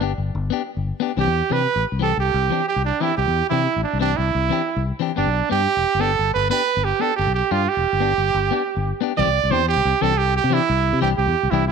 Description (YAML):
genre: highlife guitar band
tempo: 120 BPM (dotted quarters)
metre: 12/8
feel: straight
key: C major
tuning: A4 = 440 Hz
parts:
  - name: bright trumpet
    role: melody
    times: 0.0-11.7 s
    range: D4 to D5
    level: -20 LUFS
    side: right 9 dB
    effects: none
  - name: clean electric guitar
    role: accompaniment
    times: 0.0-11.6 s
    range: E3 to G4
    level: -26 LUFS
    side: left 14 dB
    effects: spring reverb
  - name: fingered electric bass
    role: bass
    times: 0.0-11.7 s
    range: E1 to C3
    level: -23 LUFS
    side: left 3 dB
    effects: none
room: moderate echo chamber reverb, RT60 1.6 s, small room reverb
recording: 1960s-style stereo with parts hard left and right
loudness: -18 LUFS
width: side -6 dB against mid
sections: 0.0-9.2 A section; 9.2-11.7 B section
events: none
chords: 0.0 G; 1.2 Cadd9; 5.2 G; 9.2 Cadd9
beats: 0.17 0.68 | 1.18 1.68 2.18 2.68 | 3.18 3.68 4.18 4.68 | 5.18 5.68 6.18 6.68 | 7.18 7.68 8.18 8.68 | 9.18 9.68 10.18 10.68 | 11.18 11.69